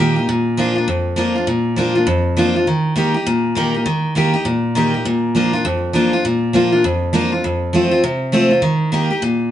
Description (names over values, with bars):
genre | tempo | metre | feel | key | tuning
rock | 201 BPM | 4/4 | swing 62% on 8ths | Bb major | A4 = 440 Hz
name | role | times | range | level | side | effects
picked steel-string acoustic guitar | solo | 0.0-9.5 s | F2 to G4 | -14 LUFS | equal | none
room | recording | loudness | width
moderate large studio reverb, RT60 0.9 s | band playing live in one room, nothing above 10.3 kHz | -15 LUFS | side -11 dB against mid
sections
0.0-9.5 A section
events
none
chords
0.3 Bb; 2.7 Eb; 5.1 Bb; 7.4 F; 8.6 Eb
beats
| 0.29 0.59 0.89 1.18 | 1.48 1.78 2.08 2.38 | 2.67 2.97 3.27 3.57 | 3.86 4.16 4.46 4.76 | 5.06 5.35 5.65 5.95 | 6.25 6.54 6.84 7.14 | 7.44 7.74 8.03 8.33 | 8.63 8.93 9.22